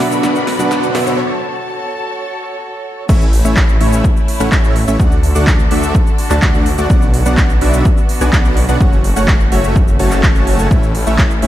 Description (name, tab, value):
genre	EDM, festival progressive house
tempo	126 BPM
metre	4/4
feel	straight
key	unclear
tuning	A4 = 440 Hz
part	warm baby grand piano	accompaniment	0.0-1.2 s	B2 to F#4	-21 LUFS	right 2 dB	sidechain pumping, ping-pong delay
part	clear studio string section	sustained chords	0.0-11.5 s	D3 to B5	-24 LUFS	equal	sidechain pumping
part	dense compressed supersaw	riff	0.0-11.5 s	A3 to A5	-18 LUFS	equal	sidechain pumping, low-pass filter, ping-pong delay
part	detuned saw bass	bass	0.0-11.5 s	F#1 to D2	-17 LUFS	equal	sidechain pumping, high-pass filter
part	big-room dance drum kit	drums	0.0-11.5 s	crash cymbal, handclaps, hi-hat, shaker, snare drum	-22 LUFS	equal	overdrive, high-pass filter on snare, high-pass filter on perc, high-pass filter on hats, high-pass filter on cymbals, high-pass filter on room
part	riser	sound effects	0.0-1.2 s	none	-24 LUFS	equal	none
part	electronic kick drum	drums	3.1-11.3 s	none	-13 LUFS	equal	overdrive
room	light reverb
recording	none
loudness	-11 LUFS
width	side -13 dB against mid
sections	0.0-3.1 A section; 3.1-11.5 B section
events	build-up 0.0-3.1; drum fill 0.0-1.2; riser 0.0-1.2; break 1.2-3.1; drop 3.1-11.5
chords	0.0 Bm; 1.2 F#m; 3.1 A; 5.0 D; 6.9 Bm; 8.8 F#m; 10.7 A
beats	0.23 0.71 | 1.19 1.66 2.14 2.62 | 3.09 3.57 4.04 4.52 | 5.00 5.47 5.95 6.42 | 6.90 7.38 7.85 8.33 | 8.80 9.28 9.76 10.23 | 10.71 11.19